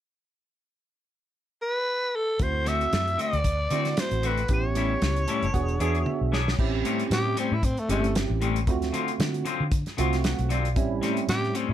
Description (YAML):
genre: straight-eighth soul blues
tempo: 115 BPM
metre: 4/4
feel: swing 55% on 16ths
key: unclear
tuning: A4 = 441 Hz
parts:
  - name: growling tenor saxophone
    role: melody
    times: 1.6-11.7 s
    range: A3 to E5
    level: -28 LUFS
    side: equal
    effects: none
  - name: barky tine electric piano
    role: accompaniment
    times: 2.4-11.5 s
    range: G3 to A5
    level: -30 LUFS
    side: right 7 dB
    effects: ensemble chorus
  - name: vintage muted fingered electric bass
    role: bass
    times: 2.4-11.7 s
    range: E1 to D3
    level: -28 LUFS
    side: equal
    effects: none
  - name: warm soul drum kit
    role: drums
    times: 2.4-11.7 s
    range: crash cymbal, hi-hat, kick drum, snare drum, toms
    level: -29 LUFS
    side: equal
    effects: none
  - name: clean electric guitar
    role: stabs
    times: 2.7-11.7 s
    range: A2 to G#4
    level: -30 LUFS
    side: left 7 dB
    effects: none
room: light reverb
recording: none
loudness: -23 LUFS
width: side -11 dB against mid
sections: 0.3-2.4 A section; 2.4-6.6 B section; 6.6-11.7 C section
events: tine electric piano fill 5.0-6.6, 10.0-10.8; drum fill 6.1-6.6; tenor saxophone solo 6.6-11.7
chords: 0.3 N.C.; 2.4 D7; 4.5 A7; 5.5 E7; 6.6 A7#9; 8.7 D7#9; 10.8 A7#9